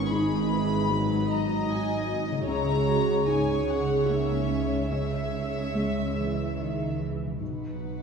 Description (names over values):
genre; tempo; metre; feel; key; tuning
cinematic; 74 BPM; 3/4; uneven beats, rubato; unclear; A4 = 440 Hz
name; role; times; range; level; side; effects
warm studio violin section; melody; 0.0-8.0 s; C#5 to B5; -34 LUFS; left 4 dB; none
warm symphonic violin section; second line; 0.0-8.0 s; G#4 to E5; -35 LUFS; left 4 dB; none
dark symphonic viola section; accompaniment; 0.0-8.0 s; E3 to E5; -30 LUFS; right 2 dB; none
felt-muted upright piano; accompaniment; 0.0-8.0 s; B1 to G#3; -32 LUFS; left 2 dB; none
concert harp; arpeggios; 0.0-8.0 s; G#2 to E5; -33 LUFS; left 1 dB; none
dark studio cello section; bass; 0.0-8.0 s; G#2 to E3; -33 LUFS; right 3 dB; none
warm chamber double bass section; bass; 0.0-8.0 s; G#1 to C#2; -32 LUFS; right 2 dB; none
room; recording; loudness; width
wet scoring stage reverb, RT60 1.7 s; heard from further back in the room; -24 LUFS; side -6 dB against mid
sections
0.0-7.4 A section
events
none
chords
0.0 G#m7; 2.5 C#m; 7.4 B